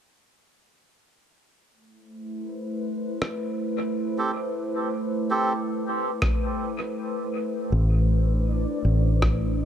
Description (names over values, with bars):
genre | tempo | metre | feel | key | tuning
ambient dub | 80 BPM | 4/4 | swing 57% on 16ths | A minor | A4 = 441 Hz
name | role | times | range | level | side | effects
warbly tape-like pad | sustained chords | 2.1-9.7 s | A3 to C5 | -28 LUFS | equal | chorus, built-in reverb
electronic rim click | drums | 3.2-9.4 s | none | -30 LUFS | equal | small room ambience, dub echo
melodica | stabs | 4.2-5.5 s | C4 to A4 | -29 LUFS | right 2 dB | low-pass filter, dub echo
electronic kick drum | drums | 6.2-9.4 s | none | -26 LUFS | equal | small room ambience
fingered electric bass | bass | 7.7-9.7 s | A1 | -21 LUFS | equal | none
bubbling stepped-filter texture | texture | 7.7-9.7 s | D4 to D5 | -33 LUFS | equal | chorus, built-in reverb
room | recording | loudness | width
light reverb | echo-heavy mix | -23 LUFS | side -9 dB against mid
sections
1.7-7.7 A section; 7.7-9.7 B section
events
none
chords
1.7 Am